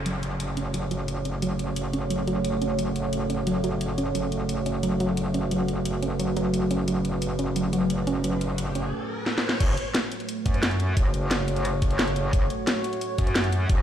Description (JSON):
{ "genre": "dark technical drum and bass", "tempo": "176 BPM", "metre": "4/4", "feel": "straight", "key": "F# minor", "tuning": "A4 = 441 Hz", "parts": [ { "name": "deep dark ambient pad", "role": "sustained chords", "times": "0.0-13.8 s", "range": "A3 to C#5", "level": "-30 LUFS", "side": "right 2 dB", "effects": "chorus, built-in reverb, sidechain pumping" }, { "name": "metallic wobble bass", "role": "bass", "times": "0.0-13.8 s", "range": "F#1 to F#2", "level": "-28 LUFS", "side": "equal", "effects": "chorus, overdrive, sidechain pumping" }, { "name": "downlifter and riser", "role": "sound effects", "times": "0.0-1.4, 7.9-9.6 s", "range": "none", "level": "-37 LUFS", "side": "left 1 dB", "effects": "none" }, { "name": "soft round pluck", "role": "arpeggios", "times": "0.1-8.9 s", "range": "F#3 to C#4", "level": "-28 LUFS", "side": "equal", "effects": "chorus, sidechain pumping, digital delay" }, { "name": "drum and bass drum kit", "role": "drums", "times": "0.1-13.8 s", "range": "crash cymbal, hi-hat, rim click, snare drum", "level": "-29 LUFS", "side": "equal", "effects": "none" }, { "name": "electronic kick drum", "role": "drums", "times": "9.6-13.8 s", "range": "none", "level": "-23 LUFS", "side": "equal", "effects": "none" } ], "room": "moderate lush hall reverb, RT60 2.1 s", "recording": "played on a big sound system in a bare room, stone room reverb", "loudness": "-23 LUFS", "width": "side -10 dB against mid", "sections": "0.0-9.6 A section; 9.6-13.8 B section", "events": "filter sweep on synth pluck 0.0-9.6; riser 7.9-9.6; drum fill 9.3-9.6; drop 9.6-13.8", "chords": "0.0 F#m", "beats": "| 0.06 0.40 0.74 1.08 | 1.42 1.76 2.10 2.44 | 2.79 3.13 3.47 3.81 | 4.15 4.49 4.83 5.17 | 5.51 5.85 6.20 6.54 | 6.88 7.22 7.56 7.90 | 8.24 8.58 8.92 9.26 | 9.60 9.95 10.29 10.63 | 10.97 11.31 11.65 11.99 | 12.33 12.67 13.01 13.35 | 13.70" }